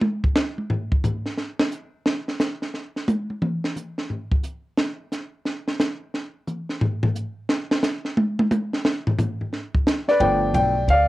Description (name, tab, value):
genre	jazz piano trio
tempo	177 BPM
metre	4/4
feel	swing 65% on 8ths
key	G mixolydian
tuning	A4 = 440 Hz
part	compact cocktail drum kit	drums	0.0-11.0 s	hi-hat, kick drum, ride cymbal, snare drum, toms	-22 LUFS	equal	cassette tape
part	clear concert grand piano	melody	10.1-11.1 s	F3 to G5	-17 LUFS	left 1 dB	cassette tape
part	upright bass	bass	10.2-11.1 s	G1 to D2	-22 LUFS	equal	none
room	light reverb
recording	home recording on cassette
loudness	-22 LUFS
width	side -17 dB against mid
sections	0.0-10.2 A section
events	drum solo 0.0-10.2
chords	0.0 N.C.; 10.2 G7